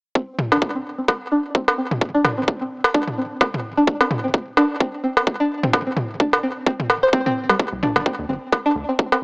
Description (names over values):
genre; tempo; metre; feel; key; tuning
minimal techno; 129 BPM; 4/4; swing 57% on 16ths; C minor; A4 = 440 Hz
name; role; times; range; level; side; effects
string-like resonator pluck; riff; 0.2-9.1 s; G3 to C5; -21 LUFS; equal; chorus, vintage 12-bit sampler grit, sidechain pumping, digital delay
electronic kick drum; drums; 0.2-9.1 s; none; -19 LUFS; equal; high-pass filter on kick
electronic toms and cowbell; percussion; 0.4-9.2 s; none; -20 LUFS; equal; digital delay
rubbery square bass; bass; 7.7-8.8 s; G1 to Eb2; -29 LUFS; equal; sidechain pumping
room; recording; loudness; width
light reverb, digital ambience; small speaker sound; -18 LUFS; side -32 dB against mid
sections
0.2-9.2 A section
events
filter sweep on synth pluck 0.2-9.2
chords
0.2 C5